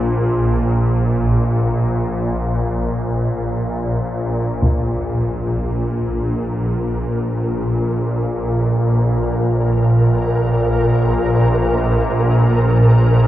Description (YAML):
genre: dark ambient drone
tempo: free time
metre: none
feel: none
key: unclear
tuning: A4 = 440 Hz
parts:
  - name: deep dark ambient pad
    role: sustained chords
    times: 0.0-4.6 s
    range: Bb3 to F5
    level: -28 LUFS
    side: equal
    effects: chorus, built-in reverb
  - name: swarming drone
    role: drone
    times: 0.0-13.3 s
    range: Bb1 to Bb2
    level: -16 LUFS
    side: equal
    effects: built-in reverb
  - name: solo taiko drums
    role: percussion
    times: 4.6-4.8 s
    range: none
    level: -22 LUFS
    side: equal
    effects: low-pass filter on perc
  - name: flickering grainy texture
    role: texture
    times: 5.9-13.3 s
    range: Bb4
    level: -26 LUFS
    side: equal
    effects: built-in reverb
room: wet cathedral reverb, RT60 5.6 s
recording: worn, warbling old tape, cassette tape, warbly pitch drift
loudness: -15 LUFS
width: side -13 dB against mid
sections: 0.0-4.6 A section; 4.6-13.3 B section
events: fade-in on synth texture 4.6-13.3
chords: 0.0 Bb5